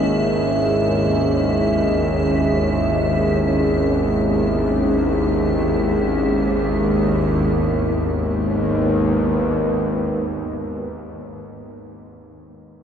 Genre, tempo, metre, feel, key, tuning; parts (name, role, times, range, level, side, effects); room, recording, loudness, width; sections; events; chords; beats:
dark ambient drone; free time; G# minor; A4 = 440 Hz
dark analog pad; sustained chords; 0.0-11.3 s; G#3 to E5; -20 LUFS; right 1 dB; chorus
bowed-like drone; drone; 0.0-10.8 s; G#1 to D#2; -21 LUFS; equal; built-in reverb
icy glass pad; texture; 0.0-7.6 s; E4; -28 LUFS; left 1 dB; chorus, built-in reverb
gamelan-type bronze metallophone; arpeggios; 4.3-10.8 s; B3; -37 LUFS; left 1 dB
wet cathedral reverb, RT60 5.8 s; worn, warbling old tape, cassette tape, warbly pitch drift; -17 LUFS; side -8 dB against mid
0.0-7.6 A section; 7.6-12.4 B section
0.0 C#madd9/G#; 7.6 G#m
free time